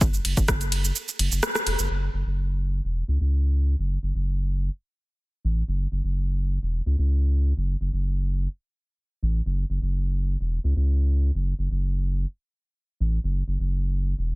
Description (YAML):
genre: minimal techno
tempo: 127 BPM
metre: 4/4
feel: straight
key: F# minor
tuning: A4 = 439 Hz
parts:
  - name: saturated sub bass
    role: bass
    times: 0.0-14.4 s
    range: E1 to C#2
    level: -23 LUFS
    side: equal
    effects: sidechain pumping
  - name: electronic kick drum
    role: drums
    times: 0.0-0.6 s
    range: none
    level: -22 LUFS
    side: equal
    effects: overdrive
  - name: punchy analog drum machine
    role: drums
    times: 0.0-1.9 s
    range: cabasa, hi-hat, ride cymbal, rim click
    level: -26 LUFS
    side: right 1 dB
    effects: overdrive, low-pass filter on hats, low-pass filter on cymbals, low-pass filter on perc, soft clipping on snare, low-pass filter on snare
room: digital ambience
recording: dense, heavily limited modern master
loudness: -23 LUFS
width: side -22 dB against mid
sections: 0.0-1.9 A section; 1.9-14.4 B section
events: drop 0.0-1.9; kick drops out 1.0-1.9; band accent 1.4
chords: none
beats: | 0.01 0.48 0.96 1.43 | 1.90 2.38 2.85 3.32 | 3.79 4.26 4.74 5.21 | 5.68 6.15 6.63 7.10 | 7.57 8.04 8.52 8.99 | 9.46 9.93 10.41 10.88 | 11.35 11.82 12.30 12.77 | 13.24 13.71 14.19